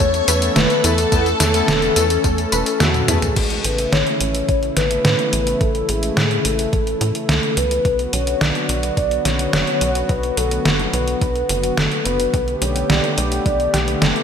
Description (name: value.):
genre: synthwave.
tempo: 107 BPM.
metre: 4/4.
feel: straight.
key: A major.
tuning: A4 = 440 Hz.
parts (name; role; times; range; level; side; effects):
soft octave-layered synth lead; melody; 0.0-14.2 s; F#4 to D5; -21 LUFS; left 2 dB; chorus, phaser, ping-pong delay.
string machine, violins; second line; 0.0-2.8 s; A4 to C#5; -25 LUFS; right 1 dB; ensemble chorus, ping-pong delay.
warm analog pad; sustained chords; 0.0-14.2 s; C#3 to A4; -24 LUFS; left 1 dB; chorus, sidechain pumping.
wide unison pluck; arpeggios; 0.0-3.2, 12.3-14.1 s; G3 to B4; -27 LUFS; right 3 dB; ping-pong delay.
tight sequencer bass; bass; 0.0-14.1 s; E1 to A2; -23 LUFS; equal; none.
detuned 8-bit digital drum machine; drums; 0.0-14.2 s; crash cymbal, hi-hat, snare drum, tambourine, toms; -20 LUFS; right 1 dB; overdrive, gated reverb.
electronic kick drum; drums; 0.0-13.6 s; none; -21 LUFS; equal; none.
analog synth brass; stabs; 0.6-3.2 s; A3 to B4; -26 LUFS; left 4 dB; chorus, ping-pong delay.
room: moderate lush hall reverb, RT60 2.6 s.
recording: bright 1980s-style digital production.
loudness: -16 LUFS.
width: side -7 dB against mid.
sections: 0.0-3.4 A section; 3.4-14.2 B section.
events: drum fill 2.9-3.4.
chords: 0.0 Esus4; 3.4 Amaj7; 7.8 Bm; 12.3 Gadd9.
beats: 0.00 0.56 | 1.12 1.68 2.24 2.80 | 3.36 3.92 4.49 5.05 | 5.61 6.17 6.73 7.29 | 7.85 8.41 8.97 9.53 | 10.09 10.65 11.21 11.78 | 12.34 12.90 13.46 14.02.